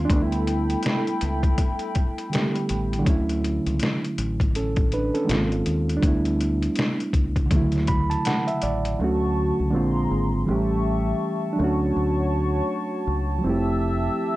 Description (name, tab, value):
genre	lo-fi hip hop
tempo	81 BPM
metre	4/4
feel	swing 60% on 16ths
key	D major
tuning	A4 = 440 Hz
part	reed electric piano	accompaniment	0.0-14.4 s	C#3 to B5	-24 LUFS	right 2 dB	none
part	hollow soft pad	sustained chords	0.0-3.0, 9.0-14.4 s	E4 to E6	-29 LUFS	left 2 dB	chorus
part	deep dub fingered electric bass	bass	0.0-14.1 s	F1 to D#2	-26 LUFS	equal	none
part	trip hop sampler-style drum kit	drums	0.1-9.0 s	hi-hat, kick drum, snare drum	-24 LUFS	left 1 dB	overdrive
room	moderate studio reverb, RT60 0.6 s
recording	cassette tape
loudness	-21 LUFS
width	side -17 dB against mid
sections	0.0-9.0 A section; 9.0-14.4 B section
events	none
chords	0.1 G69; 3.1 Dmaj9; 5.3 G#69; 6.0 G69/D; 7.5 Dmaj9; 9.0 Dmaj7; 9.7 Bb9; 10.5 A7; 11.6 Dmaj7; 13.4 Fmaj9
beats	| 0.10 0.84 1.58 2.32 | 3.06 3.80 4.54 5.28 | 6.03 6.77 7.51 8.25 | 8.99 9.73 10.47 11.21 | 11.95 12.69 13.43 14.17